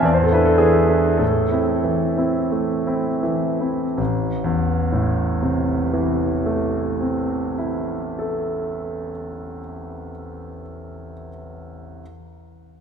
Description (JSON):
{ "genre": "classical, romantic character piece for solo piano", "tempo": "40-53 BPM", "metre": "2/4", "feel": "rubato", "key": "A minor", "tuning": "A4 = 440 Hz", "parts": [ { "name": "clear concert grand piano", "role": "solo", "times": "0.0-12.0 s", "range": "A1 to D5", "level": "-19 LUFS", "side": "equal", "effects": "none" } ], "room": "wet church reverb, RT60 3.5 s", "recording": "recorded in a church or concert hall", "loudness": "-18 LUFS", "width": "side -7 dB against mid", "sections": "0.0-4.0 A section; 4.0-9.8 B section", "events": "slowing down 0.0-4.0", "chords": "0.0 E7; 1.2 Am" }